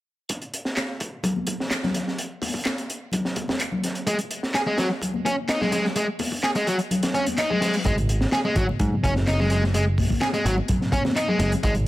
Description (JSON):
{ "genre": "breakbeat, breaks", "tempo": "127 BPM", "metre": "4/4", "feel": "straight", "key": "unclear", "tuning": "A4 = 440 Hz", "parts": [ { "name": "crunchy breakbeat drum kit", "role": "drums", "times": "0.3-11.9 s", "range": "hi-hat, kick drum, snare drum", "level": "-26 LUFS", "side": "equal", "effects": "high-pass filter on kick, high-pass filter on hats, high-pass filter on snare, high-pass filter on room" }, { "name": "electronic handclaps", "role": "drums", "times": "0.8-11.3 s", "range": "none", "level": "-32 LUFS", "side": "equal", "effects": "none" }, { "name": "congas", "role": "percussion", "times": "1.2-11.4 s", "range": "none", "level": "-29 LUFS", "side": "left 2 dB", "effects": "none" }, { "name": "biting overdriven guitar", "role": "riff", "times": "4.1-11.7 s", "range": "F#3 to G#4", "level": "-24 LUFS", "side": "equal", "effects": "vintage 12-bit sampler grit, ping-pong delay" }, { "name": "reverse cymbal", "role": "sound effects", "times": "7.3-7.9 s", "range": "none", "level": "-35 LUFS", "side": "left 2 dB", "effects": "none" }, { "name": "picked electric bass", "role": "bass", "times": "7.9-11.9 s", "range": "F#1 to G#2", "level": "-23 LUFS", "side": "equal", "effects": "none" } ], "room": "light reverb, studio reverb", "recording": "none", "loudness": "-21 LUFS", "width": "side -16 dB against mid", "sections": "0.3-7.9 A section; 7.9-11.9 B section", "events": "kick drops out 6.9-7.9; reverse cymbal 7.3-7.9", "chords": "0.3 G#5" }